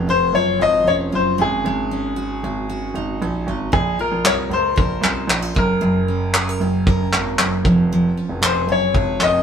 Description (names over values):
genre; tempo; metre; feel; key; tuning
acoustic pop; 115 BPM; 4/4; straight; unclear; A4 = 440 Hz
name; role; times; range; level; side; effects
picked steel-string acoustic guitar; accompaniment; 0.0-9.4 s; Gb2 to C5; -23 LUFS; right 2 dB; none
warm concert grand piano; bass; 0.0-9.4 s; F1 to Db2; -22 LUFS; right 1 dB; none
bright upright piano; melody; 0.1-9.4 s; Ab4 to Eb5; -20 LUFS; left 4 dB; none
loose indie drum kit; drums; 3.7-9.3 s; handclaps, kick drum; -19 LUFS; equal; none
room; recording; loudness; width
wet studio reverb, RT60 0.8 s; band playing live in one room; -16 LUFS; side -7 dB against mid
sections
0.0-9.4 A section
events
none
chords
0.0 Dbmaj7/F; 1.4 Ab7sus4; 3.7 Bbm; 5.6 Gb; 7.6 Dbmaj7/F